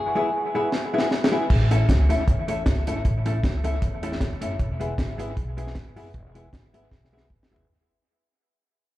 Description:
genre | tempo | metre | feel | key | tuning
ska | 155 BPM | 4/4 | swing 54% on 8ths | A major | A4 = 441 Hz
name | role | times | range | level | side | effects
semi-hollow electric guitar | melody | 0.0-1.1 s | G#4 | -30 LUFS | left 1 dB | spring reverb, dub echo
hollow-body jazz guitar | accompaniment | 0.2-7.6 s | G#3 to A4 | -31 LUFS | right 3 dB | dub echo, slapback echo
dark upright piano | stabs | 0.2-7.6 s | E4 to E5 | -30 LUFS | left 4 dB | dub echo, slapback echo
deep reggae drum kit | drums | 0.7-7.7 s | crash cymbal, hi-hat, kick drum, snare drum, toms | -24 LUFS | equal | dub echo
upright bass | bass | 1.5-7.7 s | E1 to E2 | -25 LUFS | equal | none
room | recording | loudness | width
light reverb | live gig heard through the venue's PA, club ambience | -21 LUFS | side -15 dB against mid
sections
0.0-1.5 A section; 1.5-7.7 B section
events
break 0.0-1.5; drum fill 0.7-1.5, 6.9-7.7; fade-out 1.5-7.7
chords
0.0 E; 1.5 A; 4.6 E

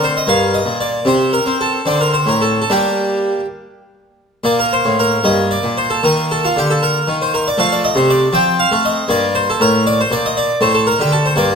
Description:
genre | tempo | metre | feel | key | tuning
classical, baroque-style suite movement for harpsichord | 68-81 BPM (dotted quarters) | 6/8 | rubato | G minor | A4 = 440 Hz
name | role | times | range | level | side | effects
harpsichord | solo | 0.0-11.6 s | G2 to G5 | -13 LUFS | equal | none
room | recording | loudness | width
wet recital hall reverb, RT60 1.7 s | close, detailed microphones | -13 LUFS | side -6 dB against mid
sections
0.0-4.4 A section; 4.4-11.6 A section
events
none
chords
0.3 Gm; 1.1 N.C.; 1.9 D5; 2.7 Gm; 4.4 Bbmaj9; 5.2 Gm; 6.0 Eb5; 7.6 F; 9.1 Gm; 10.6 D5/A

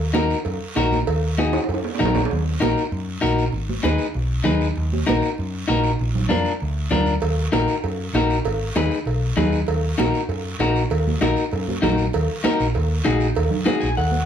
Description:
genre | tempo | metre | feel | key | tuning
latin, cumbia | 195 BPM | 4/4 | straight | Eb minor | A4 = 440 Hz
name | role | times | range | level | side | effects
hollow-body short-scale picked electric bass | bass | 0.0-14.2 s | Ab1 to Gb2 | -23 LUFS | equal | none
electric guitar at the edge of break-up | accompaniment | 0.1-14.3 s | D4 to Ab5 | -22 LUFS | left 3 dB | none
congas | percussion | 0.1-14.3 s | none | -26 LUFS | right 3 dB | none
guiro | percussion | 0.1-14.3 s | none | -35 LUFS | right 4 dB | none
cowbell and timbales | percussion | 0.4-2.3, 7.2-14.1 s | none | -28 LUFS | right 5 dB | none
room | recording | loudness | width
wet small room reverb, RT60 0.6 s | heard from further back in the room | -19 LUFS | side -9 dB against mid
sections
0.0-2.3 A section; 2.3-12.1 A section; 12.1-14.3 B section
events
drum fill 1.5-2.3; clean electric guitar fill 13.7-14.3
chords
0.0 Ebm; 3.5 Abm; 4.8 Ebm; 6.0 Bb; 7.2 Ebm; 8.5 Abm; 9.7 Ebm

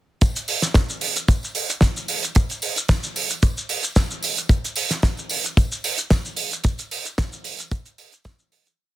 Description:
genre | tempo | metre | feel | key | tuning
nu-disco | 112 BPM | 4/4 | swing 53% on 16ths | none | none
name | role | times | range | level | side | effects
damped 70s drum kit | drums | 0.2-8.8 s | hi-hat, shaker, snare drum | -23 LUFS | right 2 dB | none
kick drum | drums | 0.2-8.4 s | none | -17 LUFS | equal | none
tambourine | percussion | 0.2-8.8 s | none | -34 LUFS | equal | none
room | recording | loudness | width
small room ambience | dense, heavily limited modern master | -20 LUFS | side -15 dB against mid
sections
0.2-8.8 drop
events
drop 0.2-8.8; fade-out 5.9-8.8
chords
none

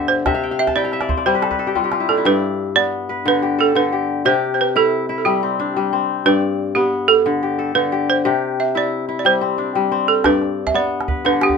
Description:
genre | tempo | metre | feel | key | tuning
west african traditional, West African string and xylophone music | 120 BPM (dotted quarters) | 12/8 | straight | G mixolydian | A4 = 438 Hz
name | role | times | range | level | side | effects
balafon | melody | 0.0-11.6 s | G4 to E5 | -17 LUFS | right 7 dB | none
kora | arpeggios | 0.0-11.6 s | G2 to A5 | -18 LUFS | left 5 dB | none
calabash | percussion | 0.1-2.2, 10.2-11.6 s | none | -25 LUFS | right 4 dB | none
room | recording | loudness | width
light reverb | minimal, uncompressed stereo recording | -16 LUFS | side -5 dB against mid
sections
0.0-2.3 A section; 2.3-11.6 A section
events
kora fill 0.3-2.3; drum fill 1.8-2.3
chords
0.3 C; 2.3 G; 4.3 C; 6.2 G; 8.2 C; 10.2 G

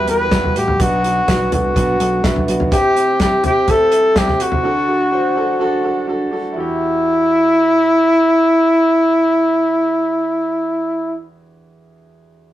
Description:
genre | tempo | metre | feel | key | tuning
piano-driven pop | 125 BPM | 4/4 | straight | E minor | A4 = 439 Hz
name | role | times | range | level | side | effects
warm trumpet | melody | 0.0-11.2 s | E4 to B4 | -14 LUFS | equal | none
clear concert grand piano | accompaniment | 0.0-12.5 s | E2 to C5 | -21 LUFS | right 1 dB | none
fingered electric bass | bass | 0.0-2.7 s | A1 to E2 | -22 LUFS | equal | none
damped 70s drum kit | drums | 0.1-4.6 s | hi-hat, kick drum, snare drum, toms | -19 LUFS | equal | none
room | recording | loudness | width
wet small room reverb, RT60 0.5 s | rough rehearsal-room recording | -13 LUFS | side -13 dB against mid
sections
0.0-6.6 A section; 6.6-10.4 B section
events
none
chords
0.0 Emadd9; 0.8 Bm; 2.7 C; 4.6 D; 6.6 Emadd9

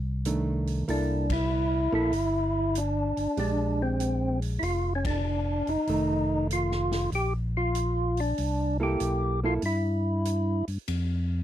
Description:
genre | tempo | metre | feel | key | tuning
soul jazz organ trio | 96 BPM | 4/4 | swing 67% on 8ths | unclear | A4 = 439 Hz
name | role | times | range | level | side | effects
tonewheel organ | bass | 0.0-11.4 s | F1 to G2 | -29 LUFS | equal | slow rotary speaker
hollow-body jazz guitar | accompaniment | 0.3-9.6 s | Eb3 to A4 | -31 LUFS | right 3 dB | none
swinging big-band drum kit | drums | 0.3-11.1 s | hi-hat, kick drum, ride cymbal, snare drum | -38 LUFS | equal | none
percussive tonewheel organ | melody | 0.9-10.7 s | C4 to G4 | -28 LUFS | equal | slow rotary speaker, overdrive
room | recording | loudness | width
little or no reverb | dry, close 1970s-style studio recording | -25 LUFS | side -12 dB against mid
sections
0.0-10.9 A section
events
band accent 1.2-1.5, 4.9-5.3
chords
0.0 F6 (rootless); 0.9 C13; 3.4 Bb13; 5.9 F7; 7.1 Bb5; 8.4 C6; 10.9 N.C.

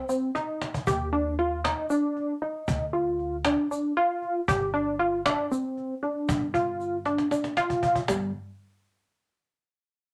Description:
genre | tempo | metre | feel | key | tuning
progressive instrumental, band music in an uneven meter | 233 BPM (eighths) | 7/8 | straight | unclear | A4 = 440 Hz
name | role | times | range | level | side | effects
tight sequenced synth | arpeggios | 0.0-8.3 s | G3 to G4 | -28 LUFS | equal | chorus
cajon | drums | 0.1-8.2 s | none | -33 LUFS | equal | none
tube shaker | percussion | 0.1-8.3 s | none | -50 LUFS | equal | none
upright bass | bass | 0.9-8.3 s | G1 to Eb2 | -38 LUFS | equal | none
room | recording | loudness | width
moderate studio reverb, RT60 0.6 s | none | -27 LUFS | mono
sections
0.0-8.1 A section; 8.1-9.9 B section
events
drum fill 0.3-0.9, 7.1-8.1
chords
0.0 Cm; 0.9 Ebmaj7(no3); 2.7 Dm; 4.5 G5; 8.1 N.C.

